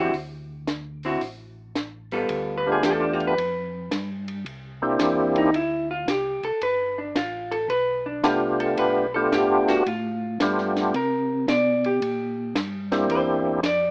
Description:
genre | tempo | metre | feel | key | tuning
soul jazz organ trio | 111 BPM | 4/4 | swing 67% on 8ths | G mixolydian | A4 = 444 Hz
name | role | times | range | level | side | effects
percussive tonewheel organ | melody | 0.0-13.6 s | A3 to G4 | -24 LUFS | equal | slow rotary speaker, overdrive, chorus vibrato
vintage hollow-body jazz guitar | accompaniment | 0.0-13.9 s | D3 to D5 | -27 LUFS | equal | none
mellow tonewheel organ | bass | 0.0-13.9 s | G1 to C3 | -34 LUFS | equal | chorus vibrato, slow rotary speaker
compact cocktail drum kit | drums | 0.1-13.8 s | hi-hat, ride cymbal, snare drum | -33 LUFS | equal | none
room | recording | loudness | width
moderate studio reverb, RT60 0.6 s | rough home demo mix, AM radio sound | -24 LUFS | mono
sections
0.0-2.3 A section; 2.3-13.9 B section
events
hollow-body jazz guitar solo 2.3-13.9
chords
0.1 D5; 2.3 G9; 4.5 C9; 6.6 G9; 10.9 C9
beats
| 0.14 0.68 1.22 1.76 | 2.30 2.84 3.38 3.92 | 4.46 5.00 5.54 6.08 | 6.62 7.16 7.70 8.24 | 8.78 9.32 9.86 10.40 | 10.94 11.48 12.02 12.56 | 13.10 13.64

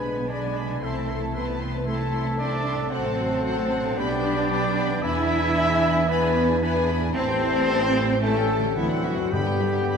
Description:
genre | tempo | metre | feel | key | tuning
classical, dramatic, fast romantic movement for symphony orchestra | 114 BPM | 4/4 | rubato | unclear | A4 = 441 Hz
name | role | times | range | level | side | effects
warm symphonic violin section | melody | 0.0-10.0 s | E5 to C6 | -36 LUFS | left 4 dB | none
clear clarinet | second line | 0.0-10.0 s | B3 to E4 | -36 LUFS | left 2 dB | none
clear oboe | second line | 0.0-10.0 s | E5 to G#5 | -36 LUFS | right 2 dB | none
mellow hollow concert flute | second line | 0.0-10.0 s | A5 to B5 | -36 LUFS | left 2 dB | none
warm symphonic violin section | second line | 0.0-10.0 s | B3 to B4 | -36 LUFS | left 3 dB | none
mellow bassoon | accompaniment | 0.0-10.0 s | D3 to A3 | -35 LUFS | right 2 dB | none
warm studio viola section | accompaniment | 0.0-10.0 s | F#3 to D4 | -36 LUFS | right 1 dB | none
dark French horn section | sustained chords | 0.0-10.0 s | E4 to E5 | -28 LUFS | left 4 dB | none
dark trombone section | sustained chords | 0.0-10.0 s | D3 to D4 | -34 LUFS | right 4 dB | none
concert harp | arpeggios | 0.0-10.0 s | G2 to C5 | -34 LUFS | left 6 dB | none
warm trumpet | stabs | 0.0-10.0 s | E4 to E5 | -31 LUFS | right 4 dB | none
dark studio double bass section | bass | 0.0-10.0 s | A1 to G2 | -29 LUFS | right 2 dB | none
rich symphonic cello section | bass | 0.0-10.0 s | E3 to E4 | -29 LUFS | right 3 dB | none
timpani | percussion | 9.3-10.0 s | G2 | -28 LUFS | equal | none
room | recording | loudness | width
wet scoring stage reverb, RT60 1.8 s | minimal, uncompressed stereo recording | -21 LUFS | side -6 dB against mid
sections
0.0-10.0 A section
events
none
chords
0.0 G#dim/B; 0.8 Am/C; 2.9 F#dim/A; 4.0 G/B; 5.0 E7; 7.2 Am7; 8.2 A7; 8.8 D13; 9.3 G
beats
0.30 | 0.83 1.35 1.88 2.40 | 2.92 3.45 3.98 4.50 | 5.03 5.56 6.09 6.62 | 7.15 7.69 8.22 8.77 | 9.33 9.90

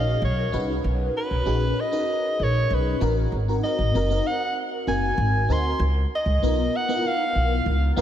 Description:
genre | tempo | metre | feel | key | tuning
polished 1980s jazz-funk pop | 97 BPM | 4/4 | straight | unclear | A4 = 440 Hz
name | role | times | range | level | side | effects
mellow soprano saxophone | melody | 0.0-8.0 s | B4 to B#5 | -26 LUFS | equal | none
FM electric piano with soft pad layer | accompaniment | 0.0-8.0 s | B3 to C#5 | -27 LUFS | left 2 dB | phaser, ensemble chorus
upright bass | bass | 0.0-8.0 s | F#1 to D2 | -23 LUFS | equal | none
room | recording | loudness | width
moderate lush hall reverb, RT60 2.6 s | dreamy mix soaked in reverb | -21 LUFS | side -10 dB against mid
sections
0.0-8.0 A section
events
none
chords
0.0 Bmaj9; 3.3 G#9; 5.8 C#13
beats
0.22 | 0.84 1.46 2.08 2.70 | 3.32 3.94 4.56 5.18 | 5.80 6.42 7.04 7.66

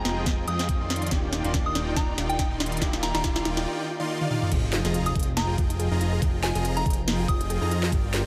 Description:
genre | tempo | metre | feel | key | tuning
future bass | 141 BPM | 4/4 | swing 56% on 16ths, half-time | F dorian | A4 = 441 Hz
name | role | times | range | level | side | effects
soft synth bell | melody | 0.0-7.7 s | G5 to Eb6 | -36 LUFS | equal | chorus, sidechain pumping, digital delay
bell-like tine electric piano | accompaniment | 0.0-4.5 s | Ab3 to G5 | -39 LUFS | equal | ensemble chorus, sidechain pumping, tape echo
supersaw chords | riff | 0.0-8.2 s | Eb3 to C6 | -33 LUFS | equal | sidechain pumping, low-pass filter, tape echo
fat analog bass | bass | 0.0-8.2 s | Eb1 to F2 | -31 LUFS | equal | sidechain pumping
riser, swell and sub drop | sound effects | 0.0-6.2 s | none | -39 LUFS | equal | none
trap drum kit | drums | 0.1-8.2 s | crash cymbal, hi-hat, snare drum, toms | -32 LUFS | equal | none
electronic kick drum | drums | 0.3-8.0 s | none | -28 LUFS | equal | overdrive
soft round pluck | arpeggios | 4.5-8.2 s | D4 to Ab4 | -39 LUFS | equal | chorus, vintage 12-bit sampler grit, sidechain pumping, tape echo
room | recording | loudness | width
light reverb | none | -26 LUFS | mono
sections
0.0-4.5 A section; 4.5-8.3 B section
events
build-up 0.0-4.5; drum fill 0.0-3.7, 4.2-4.5; drop 4.5-8.3; impact 4.5-6.2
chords
0.0 Fm7; 0.9 Ebmaj9; 4.5 Fm7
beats
0.26 0.69 | 1.11 1.54 1.97 2.39 | 2.82 3.24 3.67 4.09 | 4.52 4.94 5.37 5.79 | 6.22 6.65 7.07 7.50 | 7.92

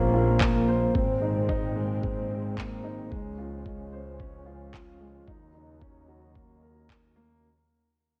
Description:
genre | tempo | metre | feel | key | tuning
piano and strings electronica | 111 BPM | 4/4 | straight | unclear | A4 = 440 Hz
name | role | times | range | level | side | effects
dark studio string section | sustained chords | 0.0-7.4 s | Bb2 to Eb4 | -39 LUFS | equal | low-pass filter
dark concert grand piano | riff | 0.0-7.5 s | Ab3 to C5 | -32 LUFS | equal | tape echo
clear chamber double bass section | bass | 0.0-7.4 s | Ab1 to Eb2 | -33 LUFS | equal | sidechain pumping
electronic handclaps | drums | 0.4-7.0 s | none | -35 LUFS | equal | none
electronic kick drum | drums | 0.4-7.0 s | none | -33 LUFS | equal | none
room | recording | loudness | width
light reverb, small room ambience | none | -27 LUFS | mono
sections
0.0-7.4 A section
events
fade-out 0.0-7.4; filter sweep on string section 0.0-7.4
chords
0.0 Bbmadd9; 0.9 Abadd9; 3.1 Dbmaj7; 5.3 Ebm7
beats
0.41 | 0.95 1.49 2.03 2.57 | 3.11 3.65 4.19 4.73 | 5.27 5.81 6.35 6.89

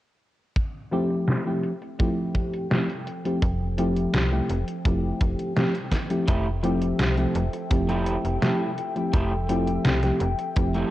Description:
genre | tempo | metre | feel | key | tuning
vaporwave | 84 BPM | 4/4 | straight | F major | A4 = 440 Hz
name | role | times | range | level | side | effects
warbly tape-like pad | sustained chords | 1.6-10.9 s | F3 to G5 | -34 LUFS | equal | chorus, built-in reverb
detuned 8-bit digital drum machine | drums | 0.6-10.9 s | hi-hat, snare drum | -27 LUFS | equal | overdrive, low-pass filter on hats, low-pass filter on snare, low-pass filter on room, gated reverb
kick drum | drums | 0.6-10.7 s | none | -26 LUFS | equal | none
mellow FM electric piano | accompaniment | 0.9-10.9 s | F3 to G4 | -26 LUFS | left 1 dB | wide subtle chorus, tape echo
slap-like FM bass | bass | 3.4-10.8 s | F1 to C2 | -27 LUFS | equal | none
electric guitar at the edge of break-up | riff | 6.3-10.9 s | A3 to A4 | -32 LUFS | right 2 dB | lush chorus, tape echo
room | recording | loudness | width
light reverb | cassette tape | -22 LUFS | side -15 dB against mid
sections
0.6-6.3 A section; 6.3-10.9 B section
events
filter sweep on drum 0.6-6.3; filter sweep on ambient pad 0.6-6.3; drum fill 5.9-6.3; clean electric guitar fill 10.6-10.9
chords
0.6 Fmaj9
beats
| 0.56 1.28 1.99 2.71 | 3.42 4.14 4.85 5.57 | 6.28 6.99 7.71 8.42 | 9.14 9.85 10.56

